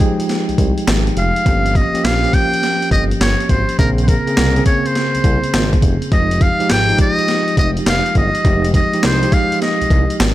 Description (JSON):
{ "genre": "R&B, new jack swing", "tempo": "103 BPM", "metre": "4/4", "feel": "swing 66% on 16ths", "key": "unclear", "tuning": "A4 = 440 Hz", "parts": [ { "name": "trumpet with metal mute", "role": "melody", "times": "0.0-10.2 s", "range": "Ab4 to G5", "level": "-19 LUFS", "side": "equal", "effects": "ping-pong delay" }, { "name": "bell-like tine electric piano", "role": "accompaniment", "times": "0.0-10.3 s", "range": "Db3 to G5", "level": "-19 LUFS", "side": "right 1 dB", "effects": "medium stereo tremolo" }, { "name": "boom bap sampler-style drum kit", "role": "drums", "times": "0.0-10.3 s", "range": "handclaps, hi-hat, kick drum, snare drum", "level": "-17 LUFS", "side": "equal", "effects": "none" }, { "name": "smooth synth bass", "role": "bass", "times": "0.5-10.3 s", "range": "F1 to C2", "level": "-18 LUFS", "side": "equal", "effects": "none" } ], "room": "little or no reverb", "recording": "none", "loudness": "-13 LUFS", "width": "side -15 dB against mid", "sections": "0.0-10.3 A section", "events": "none", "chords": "0.0 Fm9; 1.5 Gm7b5; 3.8 Bbm9; 6.1 Fm9" }